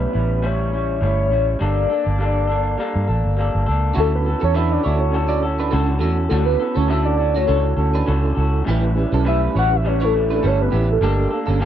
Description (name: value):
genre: indie pop, bedroom pop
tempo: 102 BPM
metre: 4/4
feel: swing 55% on 16ths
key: D major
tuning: A4 = 442 Hz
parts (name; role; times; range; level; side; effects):
- soft octave-layered synth lead; melody; 0.0-11.5 s; A4 to F#5; -22 LUFS; left 1 dB; phaser, wide subtle chorus
- electric guitar through a small old amp; accompaniment; 0.0-11.7 s; A2 to A4; -25 LUFS; left 2 dB; lush chorus, warbly pitch drift
- vintage muted fingered electric bass; bass; 0.0-11.7 s; G1 to G2; -19 LUFS; equal; none
- electric guitar through a small old amp; second line; 3.9-11.7 s; A3 to D5; -27 LUFS; right 6 dB; analog chorus, tape echo
- mellow tonewheel organ; accompaniment; 3.9-11.7 s; Bb3 to B4; -26 LUFS; right 5 dB; chorus vibrato, fast rotary speaker
room: light reverb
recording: dry, close 1970s-style studio recording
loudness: -16 LUFS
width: side -10 dB against mid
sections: 0.0-4.0 A section; 4.0-11.7 B section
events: soft synth lead solo 4.0-11.7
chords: 0.0 A7; 1.6 Gmadd9; 4.0 Dmaj7; 8.7 A7; 11.0 Gmadd9